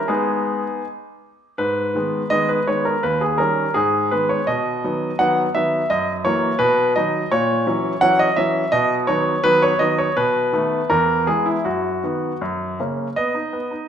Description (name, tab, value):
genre	classical-period piano sonatina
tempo	83 BPM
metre	2/4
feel	straight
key	G# minor, B major from 7.3 s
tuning	A4 = 441 Hz
part	bright grand piano	solo	0.0-13.9 s	D#2 to F#5	-17 LUFS	equal	none
room	wet recital hall reverb, RT60 1.4 s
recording	minimal, uncompressed stereo recording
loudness	-17 LUFS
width	side -8 dB against mid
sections	0.0-1.6 A section; 1.6-13.2 A section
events	none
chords	0.1 G#m; 3.0 D#7; 3.8 G#m; 4.5 B; 5.9 F#7; 6.6 B; 7.3 F#7/A#; 8.7 B; 10.2 B7; 10.9 E; 11.6 B/F#; 12.4 F#; 13.2 B